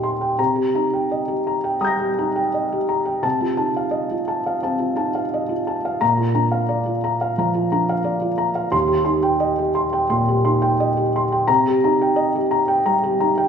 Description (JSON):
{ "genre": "neoclassical minimalist piano", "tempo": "87 BPM", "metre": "4/4", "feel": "rubato", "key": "C minor", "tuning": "A4 = 440 Hz", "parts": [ { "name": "felt-muted upright piano", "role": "solo", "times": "0.0-13.5 s", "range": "Eb2 to Bb6", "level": "-18 LUFS", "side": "equal", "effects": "none" } ], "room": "wet scoring stage reverb, RT60 1.5 s", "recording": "recorded in a church or concert hall, studio reverb", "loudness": "-18 LUFS", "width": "side -7 dB against mid", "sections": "0.0-13.5 A section", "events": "none", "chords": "0.4 Cm7; 3.2 F7/C; 6.0 Bb; 8.7 Eb6; 11.5 Cm7" }